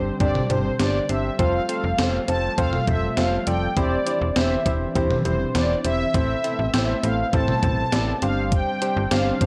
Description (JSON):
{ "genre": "synth-pop", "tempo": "101 BPM", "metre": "4/4", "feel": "straight", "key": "C major", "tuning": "A4 = 440 Hz", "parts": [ { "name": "mellow synth brass", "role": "melody", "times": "0.0-9.5 s", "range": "C5 to A5", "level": "-29 LUFS", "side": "equal", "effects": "chorus" }, { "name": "soft electric-piano-like synth keys", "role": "accompaniment", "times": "0.0-9.5 s", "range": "C4 to D5", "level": "-28 LUFS", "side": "equal", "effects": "chorus" }, { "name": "string machine, cellos", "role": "sustained chords", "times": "0.0-9.5 s", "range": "D3 to D4", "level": "-34 LUFS", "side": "equal", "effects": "ensemble chorus" }, { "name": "slap-like FM bass", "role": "bass", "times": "0.0-9.5 s", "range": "E1 to A1", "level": "-28 LUFS", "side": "equal", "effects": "none" }, { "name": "gated 80s digital drum machine", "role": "drums", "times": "0.2-9.5 s", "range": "hi-hat, kick drum, snare drum, toms", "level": "-27 LUFS", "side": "equal", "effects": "gated reverb, gated reverb snare" } ], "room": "light reverb, digital ambience", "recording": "dry, gritty hardware recording", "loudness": "-22 LUFS", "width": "mono", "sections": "0.0-9.5 A section", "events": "none", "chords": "0.0 Gsus4; 1.4 Fadd9; 3.8 Cadd9/E; 6.1 Amadd9; 8.2 Gsus4" }